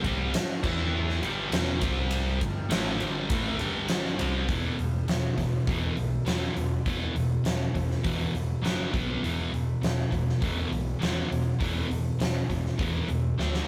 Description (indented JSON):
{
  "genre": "hard rock",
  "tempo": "101 BPM",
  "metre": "4/4",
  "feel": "straight",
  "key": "E minor",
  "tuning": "A4 = 440 Hz",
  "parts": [
    { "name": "sludgy distorted guitar", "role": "riff", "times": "0.0-13.7 s", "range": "E2 to E4", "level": "-31 LUFS", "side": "equal", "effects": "overdrive" },
    { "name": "overdriven picked electric bass", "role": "bass", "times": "0.0-13.6 s", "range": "E1 to E2", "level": "-35 LUFS", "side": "equal", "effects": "none" },
    { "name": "huge arena drum kit", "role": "drums", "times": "0.0-13.7 s", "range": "crash cymbal, hi-hat, kick drum, ride cymbal, snare drum", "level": "-32 LUFS", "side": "equal", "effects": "none" }
  ],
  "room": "moderate studio reverb, RT60 0.6 s",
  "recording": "rough rehearsal-room recording, warm saturation",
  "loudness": "-28 LUFS",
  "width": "mono",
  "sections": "0.0-4.5 A section; 4.5-13.7 B section",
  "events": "drum fill 13.4",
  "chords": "0.0 G5; 0.6 E5; 1.2 G5; 1.8 C5; 2.4 G5; 4.5 E5; 8.6 F#5; 8.9 B5; 9.2 E5; 13.4 D5"
}